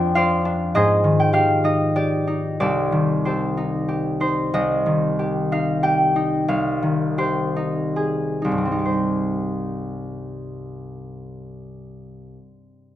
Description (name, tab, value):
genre	classical, solo harp piece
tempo	64-103 BPM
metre	3/4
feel	rubato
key	C minor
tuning	A4 = 436 Hz
part	concert harp	solo	0.0-12.4 s	C2 to Ab5	-19 LUFS	equal	none
room	moderate recital hall reverb, RT60 1.5 s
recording	none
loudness	-18 LUFS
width	side -12 dB against mid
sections	0.0-4.5 A section; 4.5-8.9 B section; 8.9-13.0 C section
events	slowing down 3.6-8.9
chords	0.0 Fm6; 0.8 Abmaj7; 2.6 Cm6; 4.5 Cmadd9; 6.5 Abmaj7/C; 8.9 Cm